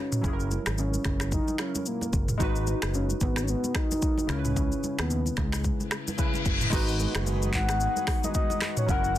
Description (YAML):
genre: afrobeats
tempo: 111 BPM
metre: 4/4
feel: swing 58% on 16ths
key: G# minor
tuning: A4 = 442 Hz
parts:
  - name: soft octave-layered synth lead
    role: melody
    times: 0.0-9.2 s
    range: G#3 to F#5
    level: -31 LUFS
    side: left 1 dB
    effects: chorus, plate reverb
  - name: warm analog keys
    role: accompaniment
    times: 0.0-9.2 s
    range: C#3 to B4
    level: -34 LUFS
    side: equal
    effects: chorus, plate reverb
  - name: afro-pop drum kit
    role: drums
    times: 0.1-9.2 s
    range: crash cymbal, finger snaps, handclaps, hi-hat, kick drum, rim click, shaker, toms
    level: -29 LUFS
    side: equal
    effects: soft clipping on snare
  - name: fingered electric bass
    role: bass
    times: 0.2-9.2 s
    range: F#1 to D#2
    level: -29 LUFS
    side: equal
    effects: none
  - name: congas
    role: percussion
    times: 0.2-9.2 s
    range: none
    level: -40 LUFS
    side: right 2 dB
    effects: none
  - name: reverse cymbal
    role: sound effects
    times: 6.0-6.7 s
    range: none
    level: -32 LUFS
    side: left 3 dB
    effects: none
  - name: airy breathy pad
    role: sustained chords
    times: 6.7-9.2 s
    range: D#3 to F#4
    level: -36 LUFS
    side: equal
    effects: chorus, plate reverb
room: light reverb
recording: dense, heavily limited modern master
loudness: -25 LUFS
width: side -13 dB against mid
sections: 0.0-6.7 A section; 6.7-9.2 B section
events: reverse cymbal 6.0-6.7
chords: 0.2 F#7; 2.4 G#m7; 4.3 C#m7; 6.7 G#m7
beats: | 0.24 0.78 1.32 1.86 | 2.40 2.94 3.48 4.02 | 4.56 5.10 5.64 6.19 | 6.73 7.27 7.81 8.35 | 8.89